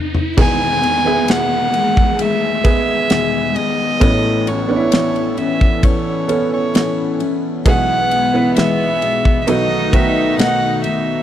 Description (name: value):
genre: pop ballad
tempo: 66 BPM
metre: 4/4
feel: straight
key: E major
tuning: A4 = 440 Hz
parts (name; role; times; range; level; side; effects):
- felt-muted upright piano; accompaniment; 0.0-11.2 s; A1 to E5; -21 LUFS; right 4 dB; none
- riser and downlifter; sound effects; 0.0-7.7 s; none; -26 LUFS; equal; none
- modern studio drum kit; drums; 0.1-11.0 s; crash cymbal, kick drum, ride cymbal, snare drum, toms; -16 LUFS; equal; none
- warm violin; melody; 0.4-11.2 s; C#5 to G#5; -18 LUFS; right 1 dB; none
- warm analog pad; sustained chords; 0.4-11.2 s; B2 to A4; -24 LUFS; right 1 dB; chorus
- picked steel-string acoustic guitar; arpeggios; 0.4-11.2 s; E2 to G#4; -22 LUFS; left 11 dB; none
- clear symphonic cello section; second line; 7.7-11.2 s; B3 to D#4; -22 LUFS; left 3 dB; none
room: little or no reverb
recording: dry, close 1970s-style studio recording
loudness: -13 LUFS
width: side -11 dB against mid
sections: 0.4-11.2 A section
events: drum fill 0.0-0.4; riser 0.0-0.4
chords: 0.4 Emaj7; 4.0 Aadd9; 7.7 E/B; 9.5 B7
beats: | 0.38 1.29 2.20 3.11 | 4.02 4.93 5.84 6.75 | 7.66 8.56 9.47 10.38